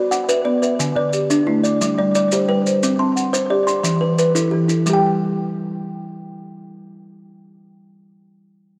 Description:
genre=southern african traditional, mbira-style interlocking cycle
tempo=118 BPM (dotted quarters)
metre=12/8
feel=straight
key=unclear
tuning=A4 = 441 Hz
part: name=kalimba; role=arpeggios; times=0.0-8.1 s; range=D3 to C6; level=-21 LUFS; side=equal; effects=slapback echo
part: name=marimba with soft mallets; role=arpeggios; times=0.0-8.2 s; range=D3 to A5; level=-23 LUFS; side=equal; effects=none
part: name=maracas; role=percussion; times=0.1-5.0 s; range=none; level=-29 LUFS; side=equal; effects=none
room=moderate plate reverb, RT60 3.8 s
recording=none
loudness=-18 LUFS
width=mono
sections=0.0-4.9 A section; 4.9-8.8 B section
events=none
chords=0.0 Bm; 0.8 D5; 1.8 G; 2.8 C5; 3.8 Em; 4.9 N.C.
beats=0.29 | 0.80 1.30 1.81 2.32 | 2.83 3.34 3.85 4.35 | 4.86 5.37 5.88 6.39 | 6.90 7.41 7.92

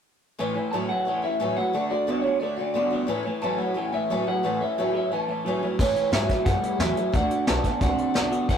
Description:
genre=rockabilly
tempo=178 BPM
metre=4/4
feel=straight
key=A major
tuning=A4 = 440 Hz
part: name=picked swing-style acoustic guitar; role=accompaniment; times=0.4-8.6 s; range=A2 to F#4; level=-29 LUFS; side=left 3 dB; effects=none
part: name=electric guitar through a small old amp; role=riff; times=0.4-8.6 s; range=A2 to C4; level=-28 LUFS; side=right 3 dB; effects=phaser
part: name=electric guitar through a small old amp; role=melody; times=0.7-8.6 s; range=C#5 to A5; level=-27 LUFS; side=equal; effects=spring reverb
part: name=upright bass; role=bass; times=5.8-8.6 s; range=A1 to A2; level=-30 LUFS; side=equal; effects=none
part: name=vintage brush drum kit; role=drums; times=5.8-8.6 s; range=crash cymbal, hi-hat, kick drum, snare drum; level=-25 LUFS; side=equal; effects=none
room=light reverb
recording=rough rehearsal-room recording, tube saturation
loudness=-22 LUFS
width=side -8 dB against mid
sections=0.4-5.8 A section; 5.8-8.6 B section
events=none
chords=0.4 A; 1.7 D; 3.1 A; 7.1 D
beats=| 0.39 0.73 1.06 1.40 | 1.74 2.08 2.41 2.75 | 3.09 3.43 3.77 4.10 | 4.44 4.78 5.12 5.45 | 5.79 6.13 6.46 6.80 | 7.14 7.48 7.82 8.15 | 8.49

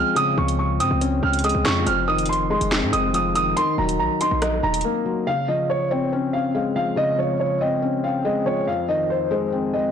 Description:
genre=hip hop, drill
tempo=141 BPM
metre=4/4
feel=half-time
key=unclear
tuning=A4 = 439 Hz
part: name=dark concert grand piano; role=melody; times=0.0-9.9 s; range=C5 to F6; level=-22 LUFS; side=right 2 dB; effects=low-pass filter
part: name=felt-muted upright piano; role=accompaniment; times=0.0-9.9 s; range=F2 to Eb5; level=-23 LUFS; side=left 3 dB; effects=low-pass filter
part: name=hard-hitting 808-style bass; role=bass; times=0.0-4.8 s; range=Eb1 to Ab2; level=-26 LUFS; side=right 1 dB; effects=none
part: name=drill drum kit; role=drums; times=0.2-4.9 s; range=finger snaps, hi-hat, rim click, snare drum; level=-27 LUFS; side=equal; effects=vintage 12-bit sampler grit, soft clipping on snare
room=light reverb, small room ambience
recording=blown-out, overdriven recording, overdrive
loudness=-19 LUFS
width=side -8 dB against mid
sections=0.0-5.3 A section; 5.3-9.9 B section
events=break 4.8-5.3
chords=0.0 Dbmaj7; 1.9 Fm7; 3.6 Ebm; 5.3 Dbmaj7; 8.7 Fm7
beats=| 0.16 0.59 1.01 1.44 | 1.87 2.29 2.72 3.14 | 3.57 3.99 4.42 4.84 | 5.27 5.70 6.12 6.55 | 6.97 7.40 7.82 8.25 | 8.67 9.10 9.53

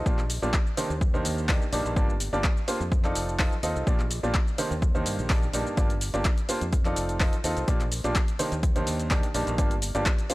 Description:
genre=piano house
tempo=126 BPM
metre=4/4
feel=straight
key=unclear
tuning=A4 = 440 Hz
part: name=bright upright piano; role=riff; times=0.0-10.3 s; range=G2 to Eb5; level=-29 LUFS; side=right 1 dB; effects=sidechain pumping
part: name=fingered electric bass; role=bass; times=0.0-10.0 s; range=F1 to G2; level=-31 LUFS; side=equal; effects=sidechain pumping
part: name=electronic kick drum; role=drums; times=0.1-10.2 s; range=none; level=-25 LUFS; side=equal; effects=overdrive
part: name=punchy analog drum machine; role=drums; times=0.1-10.3 s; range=handclaps, hi-hat, shaker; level=-32 LUFS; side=left 1 dB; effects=overdrive
room=little or no reverb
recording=dry, gritty hardware recording, transformer saturation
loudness=-23 LUFS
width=side -20 dB against mid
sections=0.0-10.3 A section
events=none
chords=0.1 Bb6; 0.8 Ebmaj7; 2.0 Gm7; 2.9 F7; 3.9 Bb6; 4.6 Ebmaj7; 5.8 Gm7; 6.7 F7; 7.7 Bb6; 8.4 Ebmaj7; 9.6 Gm7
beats=| 0.06 0.54 1.01 1.49 | 1.96 2.44 2.92 3.39 | 3.87 4.34 4.82 5.30 | 5.77 6.25 6.73 7.20 | 7.68 8.15 8.63 9.11 | 9.58 10.06

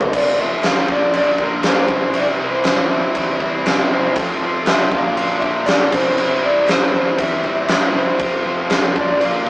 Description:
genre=classic rock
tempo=119 BPM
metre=4/4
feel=straight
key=C mixolydian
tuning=A4 = 438 Hz
part: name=crunchy overdriven guitar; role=riff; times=0.0-9.5 s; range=F2 to Bb4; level=-24 LUFS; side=right 1 dB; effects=none
part: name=overdriven electric guitar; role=riff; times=0.0-9.5 s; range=F2 to F4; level=-23 LUFS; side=left 1 dB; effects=none
part: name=fuzz picked electric bass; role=bass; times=0.0-9.5 s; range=F1 to C3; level=-29 LUFS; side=equal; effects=overdrive
part: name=huge arena drum kit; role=drums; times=0.0-9.5 s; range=crash cymbal, kick drum, snare drum, toms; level=-18 LUFS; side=equal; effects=none
part: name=electric slide guitar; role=melody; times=0.1-9.5 s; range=A4 to F5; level=-20 LUFS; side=equal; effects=slapback echo
part: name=group handclap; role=percussion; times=0.6-8.8 s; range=none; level=-31 LUFS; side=equal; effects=none
room=moderate studio reverb, RT60 0.6 s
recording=rough rehearsal-room recording, small speaker sound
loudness=-14 LUFS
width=side -23 dB against mid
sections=0.1-9.5 A section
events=none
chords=0.1 F; 0.9 Bb; 1.9 C; 4.2 F; 4.9 Bb; 5.9 C; 8.2 F; 9.0 Bb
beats=| 0.14 0.64 1.14 1.65 | 2.15 2.65 3.16 3.66 | 4.17 4.67 5.17 5.68 | 6.18 6.69 7.20 7.70 | 8.21 8.71 9.21

